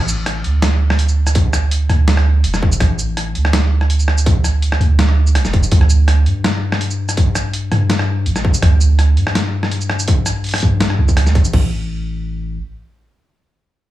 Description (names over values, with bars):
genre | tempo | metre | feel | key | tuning
half-time drum and bass | 165 BPM | 4/4 | half-time | unclear | A4 = 441 Hz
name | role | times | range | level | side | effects
long sustained 808-style bass | bass | 0.0-12.6 s | E1 to G2 | -15 LUFS | right 1 dB | none
boom bap sampler-style drum kit | drums | 0.0-11.5 s | hi-hat, rim click, shaker, snare drum | -20 LUFS | equal | none
industrial drum kit | drums | 1.4-11.6 s | crash cymbal, kick drum | -15 LUFS | equal | distortion
room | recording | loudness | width
little or no reverb | small room ambience | -13 LUFS | side -14 dB against mid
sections
0.0-11.5 A section; 11.5-13.9 B section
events
drop 0.0-11.5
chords
none